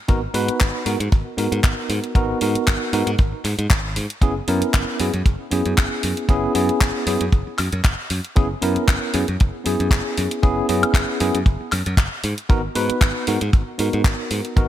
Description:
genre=nu-disco, nu disco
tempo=116 BPM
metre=4/4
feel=swing 54% on 16ths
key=unclear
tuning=A4 = 440 Hz
part: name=tine electric piano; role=accompaniment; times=0.1-14.7 s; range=B3 to B4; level=-22 LUFS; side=equal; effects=fast stereo tremolo, sidechain pumping, digital delay
part: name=modern bright picked electric bass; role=bass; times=0.1-14.7 s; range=F#1 to G#2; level=-24 LUFS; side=equal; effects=none
part: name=house drum kit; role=drums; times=0.1-14.7 s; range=handclaps, hi-hat, woodblock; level=-25 LUFS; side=left 1 dB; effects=gated reverb
part: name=kick drum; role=drums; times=0.1-14.7 s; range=none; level=-16 LUFS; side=equal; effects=none
room=light reverb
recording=bright 1980s-style digital production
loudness=-18 LUFS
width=side -12 dB against mid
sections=0.0-14.7 A section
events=none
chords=0.0 G#m7; 4.2 F#7sus4; 12.2 G#m7

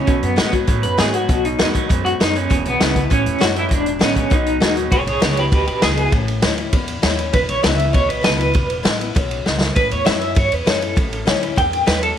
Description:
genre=rockabilly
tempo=198 BPM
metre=4/4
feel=straight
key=E major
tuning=A4 = 440 Hz
part: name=electric guitar through a small old amp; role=melody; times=0.0-12.2 s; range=B3 to G5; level=-20 LUFS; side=equal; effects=tremolo, tape echo
part: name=picked acoustic archtop guitar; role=accompaniment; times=0.0-12.2 s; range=E2 to F#4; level=-24 LUFS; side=left 10 dB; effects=none
part: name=electric guitar through a small old amp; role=riff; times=0.0-4.9 s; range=E2 to G#3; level=-25 LUFS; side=right 11 dB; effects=none
part: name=upright bass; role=bass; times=0.0-12.1 s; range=E1 to A2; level=-23 LUFS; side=equal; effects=none
part: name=vintage drum kit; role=drums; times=0.1-12.1 s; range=hi-hat, kick drum, ride cymbal, snare drum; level=-18 LUFS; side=equal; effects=none
room=light reverb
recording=1960s-style stereo with parts hard left and right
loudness=-15 LUFS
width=side -9 dB against mid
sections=0.0-4.9 A section; 4.9-12.2 B section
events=clean electric guitar solo 4.9-12.2; drum fill 9.5-9.8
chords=0.1 B7; 2.5 E7; 3.1 A7; 3.7 E7; 4.3 B7; 4.9 E7; 6.1 A7; 7.3 E7; 9.8 A7

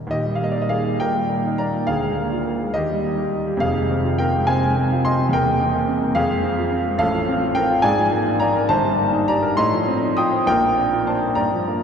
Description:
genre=classical, romantic character piece for solo piano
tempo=70 BPM (dotted quarters)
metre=6/8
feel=uneven beats, rubato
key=Eb major, Bb major from 7.0 s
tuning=A4 = 441 Hz
part: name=warm grand piano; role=solo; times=0.0-11.8 s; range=Eb1 to Eb6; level=-18 LUFS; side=equal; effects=none
room=wet cathedral reverb, RT60 5.1 s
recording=dark, warm production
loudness=-17 LUFS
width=side -7 dB against mid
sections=0.1-11.8 A section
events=none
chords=0.1 Eb; 1.9 Bb7/D; 2.7 Eb; 3.6 Fm; 5.3 C7/E; 6.1 Fm; 7.0 F/A; 7.8 Bb7/Ab; 8.7 Eb/G; 9.6 F7/A; 10.5 Bb

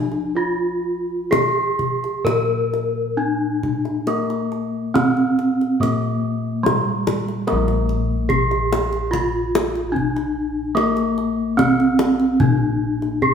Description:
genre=Javanese gamelan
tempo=62-73 BPM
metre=4/4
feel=straight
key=Bb slendro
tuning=A4 = 436 Hz
part: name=gamelan-type bronze metallophone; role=melody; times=0.0-13.3 s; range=Ab3-45c to Bb4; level=-19 LUFS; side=equal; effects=none
part: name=gamelan-type bossed gongs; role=bass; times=0.0-13.3 s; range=Bb1 to Bb4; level=-25 LUFS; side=left 1 dB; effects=none
part: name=kendang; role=percussion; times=0.1-13.3 s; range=none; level=-23 LUFS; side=left 2 dB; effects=none
room=wet stone room reverb, RT60 1.5 s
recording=band playing live in one room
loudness=-18 LUFS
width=side -7 dB against mid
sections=0.0-7.5 A section; 7.5-13.3 B section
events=none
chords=none

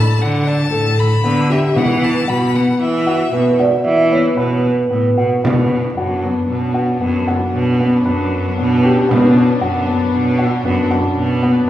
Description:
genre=contemporary instrumental, chamber music in an uneven meter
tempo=115 BPM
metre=7/4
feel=straight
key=B minor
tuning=A4 = 439 Hz
part: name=rich violin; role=melody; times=0.0-3.8 s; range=E5 to B5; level=-22 LUFS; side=left 4 dB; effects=none
part: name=dark grand piano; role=arpeggios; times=0.0-11.6 s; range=B3 to B4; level=-18 LUFS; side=left 2 dB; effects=none
part: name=bright cello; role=bass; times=0.2-11.7 s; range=F#2 to E3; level=-16 LUFS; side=right 1 dB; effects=none
part: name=frame drum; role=percussion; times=1.8-11.2 s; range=none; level=-24 LUFS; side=right 1 dB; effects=none
part: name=vibraphone with soft mallets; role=second line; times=3.3-5.4 s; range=B4 to E5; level=-17 LUFS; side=right 3 dB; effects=none
part: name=dark studio string section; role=sustained chords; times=5.4-11.7 s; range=B3 to D4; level=-22 LUFS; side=left 2 dB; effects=none
room=wet recital hall reverb, RT60 1.7 s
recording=heard from further back in the room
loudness=-13 LUFS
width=side -13 dB against mid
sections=0.0-11.7 A section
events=none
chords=0.0 D5; 1.8 Esus2; 5.4 Bmadd9

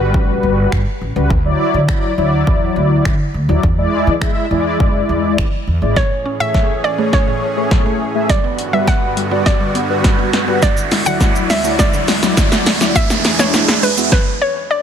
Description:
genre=dance-pop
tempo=103 BPM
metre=4/4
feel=straight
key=A major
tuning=A4 = 440 Hz
part: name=mellow synth brass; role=accompaniment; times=0.0-14.1 s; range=F#3 to E5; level=-18 LUFS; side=left 2 dB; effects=chorus, sidechain pumping
part: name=upright bass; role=bass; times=0.0-5.9 s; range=G1 to E3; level=-17 LUFS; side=equal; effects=sidechain pumping
part: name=punchy analog drum machine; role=drums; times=0.1-14.3 s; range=finger snaps, hi-hat, kick drum, shaker, snare drum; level=-15 LUFS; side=equal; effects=soft clipping on snare
part: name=hollow square pluck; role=melody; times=6.0-14.8 s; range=B4 to F#5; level=-20 LUFS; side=right 1 dB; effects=chorus, tape echo
part: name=supersaw pad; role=sustained chords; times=6.0-14.1 s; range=D2 to G#4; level=-24 LUFS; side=right 1 dB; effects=sidechain pumping
part: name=mallet-like synth pluck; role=arpeggios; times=6.0-14.1 s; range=G2 to E4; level=-26 LUFS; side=right 2 dB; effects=chorus, sidechain pumping, tape echo
part: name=riser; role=sound effects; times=7.8-14.1 s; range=none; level=-23 LUFS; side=right 5 dB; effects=none
room=light reverb, digital ambience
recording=dense, heavily limited modern master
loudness=-13 LUFS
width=side -8 dB against mid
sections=0.0-6.0 A section; 6.0-14.8 B section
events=build-up 6.0-14.8; drum fill 6.0-14.1; riser 7.8-14.8; stop 14.1-14.8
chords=0.0 Gmaj7; 1.3 Dadd9; 3.6 E7; 6.0 Amaj7; 8.3 Gmaj7; 10.6 Dadd9; 13.0 E7

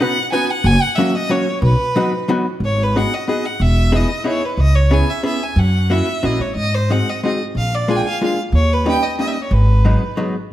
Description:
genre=musette waltz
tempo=183 BPM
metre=3/4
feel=straight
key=G# minor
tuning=A4 = 440 Hz
part: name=clear violin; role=melody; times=0.0-10.2 s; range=B4 to G#5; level=-21 LUFS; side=right 1 dB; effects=none
part: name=archtop guitar, miked and amplified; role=accompaniment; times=0.0-10.3 s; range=F#3 to B4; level=-20 LUFS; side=left 1 dB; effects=none
part: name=upright bass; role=bass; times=0.6-9.9 s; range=E1 to G#2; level=-15 LUFS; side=equal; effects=none
room=light reverb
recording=none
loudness=-14 LUFS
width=side -13 dB against mid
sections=0.0-2.6 A section; 2.6-10.5 B section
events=none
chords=0.0 Badd9; 0.6 F#; 1.6 B; 2.6 G#m7; 3.6 Emaj7; 4.6 C#m7; 5.6 F#7; 6.6 G#7; 7.6 A#7; 8.5 D#7; 9.5 G#m7

